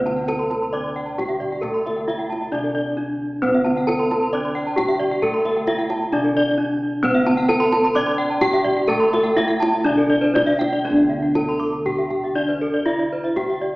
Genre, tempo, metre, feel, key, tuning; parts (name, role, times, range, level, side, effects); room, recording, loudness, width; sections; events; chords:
Balinese gamelan; 119-133 BPM; 4/4; straight; D slendro; A4 = 440 Hz
gamelan-type bronze metallophone; melody; 0.0-13.8 s; C4-45c to D5; -21 LUFS; equal
gamelan-type bronze metallophone; accompaniment; 0.0-10.8 s; D3 to D4; -29 LUFS; equal
gamelan-type bronze metallophone; arpeggios; 0.0-13.7 s; A4+25c to D6; -27 LUFS; right 1 dB
gamelan-type bossed gongs; bass; 0.0-13.8 s; D2 to C5-45c; -26 LUFS; equal
gamelan-type bronze metallophone; arpeggios; 0.1-13.6 s; C5-45c to D6; -26 LUFS; left 1 dB
kendang; percussion; 0.1-13.6 s; -30 LUFS; equal
wet recital hall reverb, RT60 1.8 s; recorded in a church or concert hall, AM radio sound; -18 LUFS; side -21 dB against mid
0.0-10.8 A section; 10.8-13.8 B section
drum fill 2.9-3.4